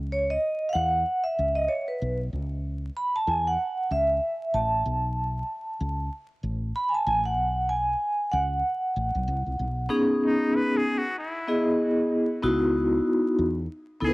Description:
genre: hip hop, jazz-hop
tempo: 95 BPM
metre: 4/4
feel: swing 60% on 16ths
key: C# minor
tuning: A4 = 440 Hz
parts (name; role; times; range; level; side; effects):
- woody fretless electric bass; bass; 0.0-14.1 s; A1 to E2; -29 LUFS; equal; wide subtle chorus
- vibraphone with medium mallets; accompaniment; 0.1-14.1 s; B3 to B5; -24 LUFS; equal; cassette tape
- trumpet with straight mute; melody; 10.3-14.1 s; D#4 to B4; -31 LUFS; left 1 dB; analog delay
room: moderate spring reverb, RT60 2.3 s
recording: home recording on cassette, vinyl crackle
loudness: -24 LUFS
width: side -21 dB against mid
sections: 0.0-9.9 A section; 9.9-14.1 A section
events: vibraphone solo 0.0-9.9; muted trumpet solo 9.9-14.1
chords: 0.0 C#m7; 4.9 Bsus2; 9.3 B5; 9.9 C#m9

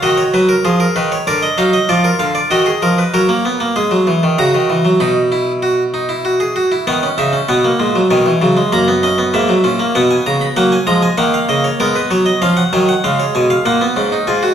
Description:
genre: classical, baroque-style 3-part fugue for harpsichord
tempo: 97 BPM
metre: 3/4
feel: straight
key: Eb minor, B major from 3.1 s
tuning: A4 = 441 Hz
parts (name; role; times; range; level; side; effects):
- harpsichord; solo; 0.0-14.5 s; F#2 to B5; -12 LUFS; equal; none
room: wet recital hall reverb, RT60 1.3 s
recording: heard from further back in the room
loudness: -12 LUFS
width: side -8 dB against mid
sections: 0.0-3.1 A section; 3.1-6.9 B section; 6.9-14.3 C section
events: none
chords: 0.0 Ebm; 0.7 Fm7b5; 1.3 Bb/D; 2.5 Ebm; 3.1 F#; 3.8 G#5; 4.4 F#7/C#; 5.0 B; 8.1 C#m7/B; 8.7 F#; 10.0 B5; 10.6 F#; 11.8 G#m7; 12.4 C#; 13.7 F#/A#

